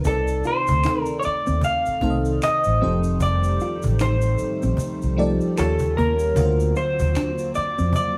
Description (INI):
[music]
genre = R&B, neo-soul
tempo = 76 BPM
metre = 4/4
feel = swing 57% on 16ths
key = C dorian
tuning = A4 = 440 Hz
[part]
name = FM electric piano with soft pad layer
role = accompaniment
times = 0.0-8.2 s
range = C3 to Eb5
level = -29 LUFS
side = equal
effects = chorus, phaser
[part]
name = hollow soft pad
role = sustained chords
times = 0.0-8.2 s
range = D3 to F4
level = -35 LUFS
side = equal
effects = ensemble chorus
[part]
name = vintage muted fingered electric bass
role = bass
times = 0.0-7.9 s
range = F1 to E#2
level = -26 LUFS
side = equal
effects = none
[part]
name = tube shaker and finger snaps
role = percussion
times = 0.0-8.2 s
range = none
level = -44 LUFS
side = equal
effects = none
[part]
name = electric guitar through a small old amp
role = melody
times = 0.1-8.2 s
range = A4 to F5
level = -26 LUFS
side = equal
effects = none
[part]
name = cajon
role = drums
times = 0.1-8.1 s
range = none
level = -31 LUFS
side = equal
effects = none
[part]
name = mellow electric guitar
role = second line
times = 0.5-7.9 s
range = A3 to F4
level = -33 LUFS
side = equal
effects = none
[sound]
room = moderate large studio reverb, RT60 1.3 s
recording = band playing live in one room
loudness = -21 LUFS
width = mono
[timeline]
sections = 0.0-8.2 A section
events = none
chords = 0.0 Cm69; 2.8 F13; 5.6 Eb9; 6.4 D7alt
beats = | 0.05 0.84 1.63 2.42 | 3.21 4.00 4.79 5.58 | 6.36 7.15 7.94